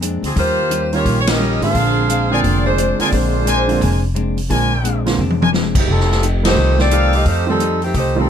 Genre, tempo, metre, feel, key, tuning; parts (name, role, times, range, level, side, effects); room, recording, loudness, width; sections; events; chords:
jazz, big band swing; 174 BPM; 4/4; swing 63% on 8ths; Bb mixolydian; A4 = 440 Hz
vintage hollow-body jazz guitar; accompaniment; 0.0-8.2 s; Bb2 to G4; -25 LUFS; left 4 dB
upright bass; bass; 0.0-8.3 s; F1 to F2; -18 LUFS; equal
swinging big-band drum kit; drums; 0.0-8.0 s; crash cymbal, hi-hat, kick drum, ride cymbal, snare drum, toms; -22 LUFS; left 1 dB
warm saxophone section; melody; 0.2-8.3 s; Eb3 to F5; -18 LUFS; equal
warm grand piano; accompaniment; 0.9-8.3 s; D3 to F4; -22 LUFS; right 7 dB
warm trumpet section; stabs; 2.3-7.4 s; D4 to Ab5; -21 LUFS; left 1 dB
little or no reverb; -14 LUFS; side -8 dB against mid
0.0-8.3 A section
band accent 1.2, 6.4; drum fill 5.2-5.5
0.4 Eb9; 1.7 Bb9; 5.9 F9